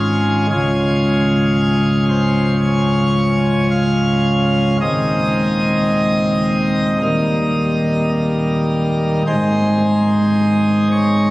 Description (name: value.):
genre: classical, chorale-style piece for pipe organ.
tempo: 53-57 BPM.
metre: 4/4.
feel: rubato.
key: Ab major.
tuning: A4 = 440 Hz.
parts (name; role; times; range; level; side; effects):
pipe organ, plenum; solo; 0.0-11.3 s; Db1 to F5; -14 LUFS; equal; none.
room: wet cathedral reverb, RT60 5.5 s.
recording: recorded on a phone in the room, studio reverb, compression.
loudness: -14 LUFS.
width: side -18 dB against mid.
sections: 0.0-11.3 A section.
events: none.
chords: 0.5 Db; 4.8 Ab/Eb; 7.0 Eb; 9.3 Ab.